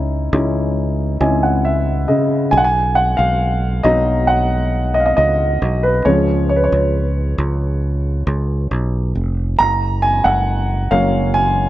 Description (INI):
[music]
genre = pop ballad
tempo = 68 BPM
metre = 4/4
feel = straight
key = unclear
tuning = A4 = 442 Hz
[part]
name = dark upright piano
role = accompaniment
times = 0.0-11.7 s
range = C#3 to A#5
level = -16 LUFS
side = equal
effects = none
[part]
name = fingered electric bass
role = bass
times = 0.0-11.7 s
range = E#1 to C#2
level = -18 LUFS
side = equal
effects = none
[sound]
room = light reverb, studio ambience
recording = none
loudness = -14 LUFS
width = side -14 dB against mid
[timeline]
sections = 0.0-2.5 A section; 2.5-11.7 B section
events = upright piano fill 0.8-2.5; upright piano solo 2.5-11.7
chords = 0.0 C#madd9; 2.5 B; 6.1 C#; 9.6 F#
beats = 0.77 1.65 | 2.53 3.42 4.30 5.18 | 6.06 6.95 7.83 8.71 | 9.59 10.47 11.36